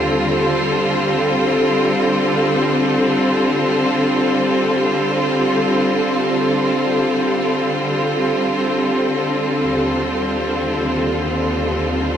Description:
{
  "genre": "ambient",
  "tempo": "free time",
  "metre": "none",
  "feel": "none",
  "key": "unclear",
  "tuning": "A4 = 440 Hz",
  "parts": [
    { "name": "bright studio string section", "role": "solo", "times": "0.0-12.2 s", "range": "Eb2 to A4", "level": "-15 LUFS", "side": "equal", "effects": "tape echo" }
  ],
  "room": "wet huge ambient reverb, RT60 7.7 s",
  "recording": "none",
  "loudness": "-15 LUFS",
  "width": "side -9 dB against mid",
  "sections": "0.0-3.5 A section; 3.5-12.2 B section",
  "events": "none",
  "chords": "0.4 F69/D; 9.6 Ebmaj7"
}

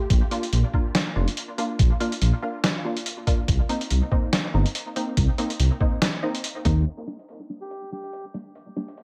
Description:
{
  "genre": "deep dubstep",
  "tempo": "142 BPM",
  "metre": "4/4",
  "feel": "swing 56% on 16ths, half-time",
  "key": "G minor",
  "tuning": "A4 = 440 Hz",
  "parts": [
    { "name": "filtered dub chord stab", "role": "stabs", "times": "0.0-8.9 s", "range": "G3 to F4", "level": "-32 LUFS", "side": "equal", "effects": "ensemble chorus, dub echo" },
    { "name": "dark detuned saw bass", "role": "bass", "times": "0.1-6.8 s", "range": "F1 to Eb2", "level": "-23 LUFS", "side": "equal", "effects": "none" },
    { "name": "electronic kick drum", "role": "drums", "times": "0.1-6.7 s", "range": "none", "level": "-24 LUFS", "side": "equal", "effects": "none" },
    { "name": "trip hop sampler-style drum kit", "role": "drums", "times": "0.1-9.0 s", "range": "hi-hat, snare drum", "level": "-29 LUFS", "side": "equal", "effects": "none" },
    { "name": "melodica", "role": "melody", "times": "7.6-8.2 s", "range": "G4", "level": "-40 LUFS", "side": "equal", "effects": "dub echo" }
  ],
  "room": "little or no reverb",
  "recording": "low-pass filter",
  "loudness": "-24 LUFS",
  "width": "mono",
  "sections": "0.0-6.9 A section; 6.9-9.0 B section",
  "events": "filter sweep on synth stab 6.9-9.0",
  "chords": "0.1 Bb; 3.5 Cm7; 6.9 Gm"
}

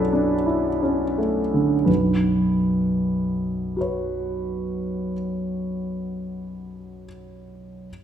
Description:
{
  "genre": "classical, impressionist solo piano",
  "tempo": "27-32 BPM (dotted quarters)",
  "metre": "6/8",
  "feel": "rubato",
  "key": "unclear",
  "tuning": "A4 = 440 Hz",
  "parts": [
    { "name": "warm concert grand piano", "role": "solo", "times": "0.0-7.9 s", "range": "B1 to C#5", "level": "-22 LUFS", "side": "equal", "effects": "none" }
  ],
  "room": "wet scoring stage reverb, RT60 1.7 s",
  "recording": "none",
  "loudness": "-21 LUFS",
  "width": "side -9 dB against mid",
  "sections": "0.0-1.9 A section; 1.9-5.6 B section",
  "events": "slowing down 0.0-1.9",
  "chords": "0.0 Bm11; 1.9 Bsus2"
}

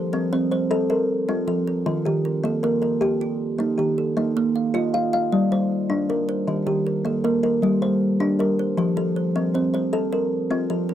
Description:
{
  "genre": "southern african traditional, mbira-style interlocking cycle",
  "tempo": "104 BPM (dotted quarters)",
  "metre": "12/8",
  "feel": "straight",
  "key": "unclear",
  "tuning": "A4 = 441 Hz",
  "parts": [
    { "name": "kalimba", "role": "arpeggios", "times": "0.0-10.9 s", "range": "Eb3 to F5", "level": "-22 LUFS", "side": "left 3 dB", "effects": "none" },
    { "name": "kalimba", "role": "arpeggios", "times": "0.0-10.9 s", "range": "Eb3 to F5", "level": "-24 LUFS", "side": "right 6 dB", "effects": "none" }
  ],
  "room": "light reverb",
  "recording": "dry, close 1970s-style studio recording",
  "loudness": "-20 LUFS",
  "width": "side -11 dB against mid",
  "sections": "0.0-10.9 A section",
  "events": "none",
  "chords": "0.0 F; 1.9 Eb; 4.2 Bb5; 5.3 Gm; 6.5 Eb; 7.6 Gm; 8.8 F"
}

